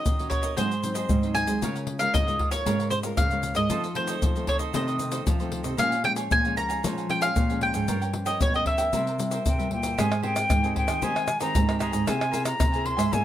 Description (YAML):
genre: samba and choro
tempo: 115 BPM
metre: 4/4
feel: straight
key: unclear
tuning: A4 = 440 Hz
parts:
  - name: mandolin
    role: melody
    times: 0.0-9.7 s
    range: C5 to Bb5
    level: -27 LUFS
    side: equal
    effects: none
  - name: cavaquinho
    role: accompaniment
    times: 0.0-13.2 s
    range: E4 to Ab5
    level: -35 LUFS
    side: right 6 dB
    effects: none
  - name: nylon-string guitar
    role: accompaniment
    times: 0.0-13.2 s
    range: F2 to Bb4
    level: -34 LUFS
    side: left 4 dB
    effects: none
  - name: nylon-string guitar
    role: bass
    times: 0.1-13.2 s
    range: G2 to Ab3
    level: -29 LUFS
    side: right 2 dB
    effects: none
  - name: tube shaker, surdo, pandeiro and tamborim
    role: percussion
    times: 0.1-13.2 s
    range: none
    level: -27 LUFS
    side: left 1 dB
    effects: none
  - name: silver concert flute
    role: second line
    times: 9.5-13.2 s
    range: G5 to C6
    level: -28 LUFS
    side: left 2 dB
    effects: none
room: light reverb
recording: close, detailed microphones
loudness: -23 LUFS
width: side -12 dB against mid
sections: 0.0-10.0 A section; 10.0-13.2 B section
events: flute solo 10.0-13.2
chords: 0.0 Ebm7; 0.6 Ab7; 1.6 Db6; 3.7 F7; 5.8 Bbm7; 7.9 Gm7b5; 8.9 C7; 10.0 Abmaj9; 12.1 Caug7